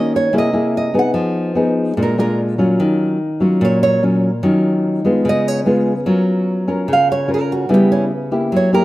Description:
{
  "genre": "bossa nova",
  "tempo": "147 BPM",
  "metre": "4/4",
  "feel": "straight",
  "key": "Eb minor",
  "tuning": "A4 = 441 Hz",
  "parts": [
    { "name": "nylon-string guitar", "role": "melody", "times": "0.0-8.8 s", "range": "C#4 to Gb5", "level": "-18 LUFS", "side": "right 3 dB", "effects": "none" },
    { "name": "nylon-string guitar", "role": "accompaniment", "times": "0.0-8.8 s", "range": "Bb2 to A#4", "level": "-15 LUFS", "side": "left 1 dB", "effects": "none" }
  ],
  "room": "light reverb, small room ambience",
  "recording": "rough home demo mix",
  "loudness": "-14 LUFS",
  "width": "side -17 dB against mid",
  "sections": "0.0-6.1 A section; 6.1-8.8 A section",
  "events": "nylon-string guitar solo 0.0-8.8",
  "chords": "0.3 C7alt; 1.2 Fm7b5; 2.0 Bb7; 2.8 Ebm9; 5.2 Db7; 6.1 F#maj7; 7.7 C#m7b5"
}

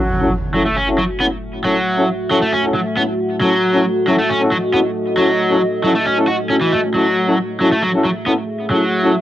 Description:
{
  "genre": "breakbeat",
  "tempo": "136 BPM",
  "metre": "4/4",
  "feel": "straight",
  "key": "F# dorian",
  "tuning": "A4 = 440 Hz",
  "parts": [
    { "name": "deep dark ambient pad", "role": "sustained chords", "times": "1.0-9.2 s", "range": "A3 to E5", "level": "-20 LUFS", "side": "equal", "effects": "chorus, built-in reverb" },
    { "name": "cranked stack guitar", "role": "riff", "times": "0.0-9.1 s", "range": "E3 to F#4", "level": "-17 LUFS", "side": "right 1 dB", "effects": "overdrive, low-pass filter, tape echo" },
    { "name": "impact", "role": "sound effects", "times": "0.0-1.6 s", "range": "none", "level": "-24 LUFS", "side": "right 1 dB", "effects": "none" },
    { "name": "warm brass ensemble", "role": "stabs", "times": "0.2-9.1 s", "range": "C#4 to A4", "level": "-18 LUFS", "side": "left 1 dB", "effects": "low-pass filter, tape echo" }
  ],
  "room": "wet booth ambience, RT60 0.2 s",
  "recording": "home recording on cassette",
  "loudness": "-14 LUFS",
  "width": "side -13 dB against mid",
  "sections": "0.0-9.2 A section",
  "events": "impact 0.0-1.6; filter sweep on brass ensemble 0.0-9.2",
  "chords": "0.0 F#m7"
}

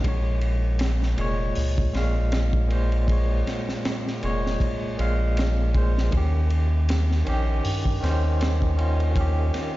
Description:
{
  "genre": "trip hop",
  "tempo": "79 BPM",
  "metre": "4/4",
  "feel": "swing 57% on 16ths",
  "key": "Bb dorian",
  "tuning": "A4 = 437 Hz",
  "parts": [
    { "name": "barky tine electric piano", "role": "accompaniment", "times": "0.0-9.8 s", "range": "Bb2 to F5", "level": "-28 LUFS", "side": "equal", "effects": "tremolo, tape echo" },
    { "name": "round analog bass", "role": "bass", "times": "0.0-9.5 s", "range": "F1 to G2", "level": "-22 LUFS", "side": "equal", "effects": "none" },
    { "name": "crunchy breakbeat drum kit", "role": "drums", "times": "0.0-9.8 s", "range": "hi-hat, kick drum, ride cymbal, snare drum", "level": "-28 LUFS", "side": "equal", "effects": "none" }
  ],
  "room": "studio reverb",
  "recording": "played on a big sound system in a bare room, stone room reverb, nothing above 7.5 kHz",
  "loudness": "-21 LUFS",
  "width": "side -17 dB against mid",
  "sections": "0.0-9.8 A section",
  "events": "none",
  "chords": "0.0 Bbm7; 6.1 Eb7"
}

